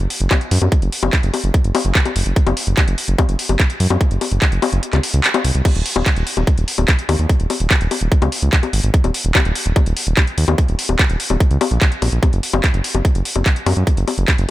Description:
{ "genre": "psychedelic trance", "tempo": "146 BPM", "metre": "4/4", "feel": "straight", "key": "unclear", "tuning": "A4 = 440 Hz", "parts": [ { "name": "round analog bass", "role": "bass", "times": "0.0-14.5 s", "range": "Eb1 to Gb2", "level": "-17 LUFS", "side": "equal", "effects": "none" }, { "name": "drum and bass drum kit", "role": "drums", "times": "0.0-14.5 s", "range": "bongos, crash cymbal, handclaps, hi-hat", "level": "-19 LUFS", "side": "left 3 dB", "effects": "none" }, { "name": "electronic kick drum", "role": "drums", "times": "0.3-14.4 s", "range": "none", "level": "-14 LUFS", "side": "equal", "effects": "none" } ], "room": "little or no reverb", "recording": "none", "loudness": "-14 LUFS", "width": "side -15 dB against mid", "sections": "0.0-5.7 A section; 5.7-14.5 B section", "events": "kick drops out 4.8-5.7; drop 5.7-14.5", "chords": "none", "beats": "0.31 | 0.72 1.13 1.54 1.95 | 2.36 2.77 3.19 3.60 | 4.01 4.42 4.83 5.24 | 5.65 6.06 6.47 6.88 | 7.29 7.71 8.12 8.53 | 8.94 9.35 9.76 10.17 | 10.58 10.99 11.40 11.81 | 12.23 12.64 13.05 13.46 | 13.87 14.28" }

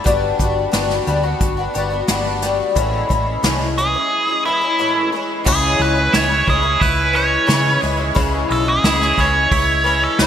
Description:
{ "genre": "folk rock and heartland rock", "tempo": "89 BPM", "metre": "4/4", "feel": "straight", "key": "unclear", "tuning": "A4 = 440 Hz", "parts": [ { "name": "picked twelve-string acoustic guitar", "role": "accompaniment", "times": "0.0-10.3 s", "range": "A2 to F#4", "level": "-20 LUFS", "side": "left 4 dB", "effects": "analog chorus" }, { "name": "hollow-body short-scale fingered electric bass", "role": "bass", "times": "0.1-10.3 s", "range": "G1 to C#3", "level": "-22 LUFS", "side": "equal", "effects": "none" }, { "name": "soft brush drum kit", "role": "drums", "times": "0.1-10.3 s", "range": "crash cymbal, hi-hat, kick drum, snare drum", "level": "-21 LUFS", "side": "equal", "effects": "gated reverb" }, { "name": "nasal lead guitar with a parked wah", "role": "melody", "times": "3.8-10.3 s", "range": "E4 to C#5", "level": "-17 LUFS", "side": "right 1 dB", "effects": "overdrive" }, { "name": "twangy electric guitar", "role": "riff", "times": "5.5-10.3 s", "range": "C#3 to E4", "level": "-22 LUFS", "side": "right 5 dB", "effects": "wide subtle chorus" } ], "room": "wet lush hall reverb, RT60 2.9 s", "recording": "bright 1980s-style digital production", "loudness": "-14 LUFS", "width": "side -9 dB against mid", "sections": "0.0-5.5 A section; 5.5-10.3 B section", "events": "none", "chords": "0.1 Gmaj7; 2.8 Amaj7; 5.5 C#m", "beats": "| 0.06 0.73 1.41 2.09 | 2.77 3.44 4.12 4.79 | 5.47 6.14 6.82 7.50 | 8.17 8.84 9.52 10.19" }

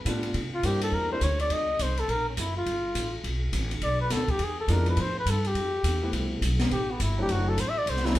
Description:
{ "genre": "jazz, small-group swing and bop", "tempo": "208 BPM", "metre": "4/4", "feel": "swing 62% on 8ths", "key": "unclear", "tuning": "A4 = 439 Hz", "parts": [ { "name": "upright bass", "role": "bass", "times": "0.0-8.2 s", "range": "F#1 to C3", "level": "-28 LUFS", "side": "equal", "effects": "none" }, { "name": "warm concert grand piano", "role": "accompaniment", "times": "0.1-1.2, 4.7-8.2 s", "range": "F3 to F4", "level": "-32 LUFS", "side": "equal", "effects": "none" }, { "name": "open jazz drum kit", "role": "drums", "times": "0.1-8.2 s", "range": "hi-hat, kick drum, ride cymbal, snare drum", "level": "-32 LUFS", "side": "equal", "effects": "none" }, { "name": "warm flugelhorn", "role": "melody", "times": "0.5-8.2 s", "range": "B3 to E5", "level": "-29 LUFS", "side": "left 1 dB", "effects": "none" } ], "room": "wet studio reverb, RT60 0.8 s", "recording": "band playing live in one room", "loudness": "-25 LUFS", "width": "side -15 dB against mid", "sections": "0.0-8.2 A section", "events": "flugelhorn solo 0.0-8.2", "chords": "0.3 C9; 1.5 F#(#11); 2.7 G9; 3.8 Bm7; 4.4 E7b9; 5.0 Am7; 7.3 D9", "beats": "0.06 | 0.35 0.64 0.93 1.22 | 1.51 1.79 2.08 2.37 | 2.66 2.95 3.24 3.53 | 3.82 4.11 4.40 4.69 | 4.98 5.26 5.55 5.84 | 6.13 6.42 6.71 7.00 | 7.29 7.58 7.87 8.15" }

